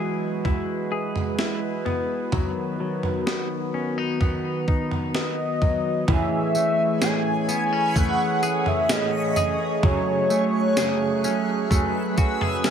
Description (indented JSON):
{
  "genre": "dream pop",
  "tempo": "64 BPM",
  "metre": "4/4",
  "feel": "straight",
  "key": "A lydian",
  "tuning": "A4 = 440 Hz",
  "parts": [
    { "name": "warm analog pad", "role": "sustained chords", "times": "0.0-12.7 s", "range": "D#3 to C#5", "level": "-27 LUFS", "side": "right 3 dB", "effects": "chorus" },
    { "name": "semi-hollow electric guitar", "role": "arpeggios", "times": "0.0-12.7 s", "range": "E3 to G#4", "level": "-28 LUFS", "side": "left 5 dB", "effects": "wide subtle chorus, tape echo" },
    { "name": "gated 80s digital drum machine", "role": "drums", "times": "0.5-12.7 s", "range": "kick drum, snare drum, tambourine, toms", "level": "-24 LUFS", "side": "right 1 dB", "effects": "gated reverb, gated reverb snare" },
    { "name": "warm velvety synth lead", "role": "melody", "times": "5.2-12.7 s", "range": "C#5 to G#5", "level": "-25 LUFS", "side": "left 1 dB", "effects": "chorus, tape echo" },
    { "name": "mellow electric guitar", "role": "accompaniment", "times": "6.1-12.7 s", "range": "F#2 to G#4", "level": "-30 LUFS", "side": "right 5 dB", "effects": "tremolo, lush chorus" },
    { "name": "backwards swelling texture", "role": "texture", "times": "6.7-12.7 s", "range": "G#5 to F#6", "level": "-35 LUFS", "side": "right 2 dB", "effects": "built-in reverb, tape echo" }
  ],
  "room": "moderate huge ambient reverb, RT60 7.9 s",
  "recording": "none",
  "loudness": "-21 LUFS",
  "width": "side -8 dB against mid",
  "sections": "0.0-6.1 A section; 6.1-12.7 B section",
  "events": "none",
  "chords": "0.0 Eadd9; 2.3 B; 6.1 Amaj7; 9.8 F#madd9"
}